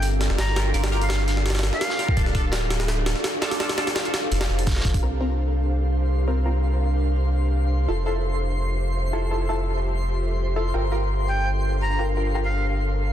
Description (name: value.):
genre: drum and bass, jungle.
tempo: 168 BPM.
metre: 4/4.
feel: straight.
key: G dorian.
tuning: A4 = 440 Hz.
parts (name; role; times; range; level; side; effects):
breathy bright jazz flute; melody; 0.0-2.2, 11.3-12.7 s; F5 to Bb5; -30 LUFS; right 1 dB; dub echo.
ethereal airy pad; sustained chords; 0.0-13.1 s; D4 to F5; -30 LUFS; equal; ensemble chorus, built-in reverb.
soft dub sub bass; bass; 0.0-13.1 s; D1 to C2; -23 LUFS; equal; tube saturation.
jungle sampler-style drum kit; drums; 0.0-5.0 s; hi-hat, kick drum, snare drum; -24 LUFS; equal; none.
loose indie drum kit; drums; 0.0-4.9 s; hi-hat, snare drum; -35 LUFS; right 1 dB; high-pass filter on hats, high-pass filter on snare, high-pass filter on room.
band-passed chord stab; stabs; 0.6-12.4 s; C4 to Bb4; -31 LUFS; left 1 dB; phaser, lush chorus, dub echo.
twinkling granular texture; texture; 5.7-13.1 s; C5 to C6; -35 LUFS; equal; built-in reverb.
room: light reverb, small room ambience.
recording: dense, heavily limited modern master.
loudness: -21 LUFS.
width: side -11 dB against mid.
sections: 0.0-5.0 A section; 5.0-13.1 B section.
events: drop 0.0-5.0.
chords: 0.0 Gm7; 2.2 Dm; 3.6 F6; 5.0 C7sus4; 7.9 Fmaj7; 10.7 Gm7.